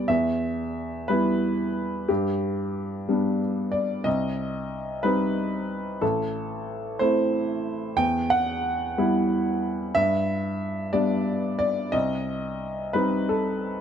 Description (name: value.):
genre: neoclassical minimalist piano.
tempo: 61 BPM (dotted quarters).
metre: 6/8.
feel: rubato.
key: E minor.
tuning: A4 = 441 Hz.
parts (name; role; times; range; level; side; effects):
clear upright piano; solo; 0.0-13.8 s; A1 to G5; -23 LUFS; equal; none.
room: moderate small room reverb, RT60 0.6 s.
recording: dark, warm production.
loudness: -23 LUFS.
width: side -8 dB against mid.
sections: 0.1-13.8 A section.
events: none.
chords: 0.1 Em; 2.1 G; 4.1 Cm; 6.0 Am; 8.0 Em; 10.0 G; 11.9 Cm.